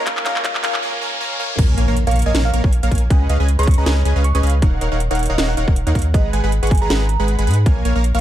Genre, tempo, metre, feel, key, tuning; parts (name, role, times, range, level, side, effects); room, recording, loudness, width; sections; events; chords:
future bass; 158 BPM; 4/4; swing 55% on 16ths, half-time; A4 = 441 Hz
bell-like FM electric piano; melody; 0.0-8.2 s; Eb5 to Db6; -27 LUFS; right 3 dB; chorus, phaser, cassette tape, sidechain pumping, dub echo
felt-muted upright piano; accompaniment; 0.0-1.6 s; Ab3 to Bb4; -33 LUFS; left 4 dB; sidechain pumping, tape echo
supersaw stab; riff; 0.0-8.2 s; Ab3 to Db6; -22 LUFS; right 1 dB; sidechain pumping
saturated sub bass; bass; 0.0-8.2 s; Eb1 to Ab2; -17 LUFS; equal; sidechain pumping, high-pass filter
riser and impact; sound effects; 0.0-3.1 s; -26 LUFS; equal
electronic kick drum; drums; 0.1-7.7 s; -16 LUFS; equal; overdrive
trap drum kit; drums; 0.1-8.2 s; crash cymbal, handclaps, hi-hat, snare drum, toms; -24 LUFS; equal; overdrive, high-pass filter on snare, high-pass filter on hats, high-pass filter on toms, high-pass filter on cymbals, high-pass filter on room
little or no reverb; dark, warm production, high-pass filter; -15 LUFS; side -12 dB against mid
0.0-1.6 A section; 1.6-8.2 B section
build-up 0.0-1.6; drum fill 0.0-0.8, 1.4; riser 0.0-1.6; filter sweep 0.0-1.6; break 0.8-1.6; drop 1.6-8.2; impact 1.6-3.1
0.1 Abm9; 1.6 Bbm7; 3.1 Db7sus4; 4.6 Ebm9; 6.1 Abm9; 7.7 Bbm7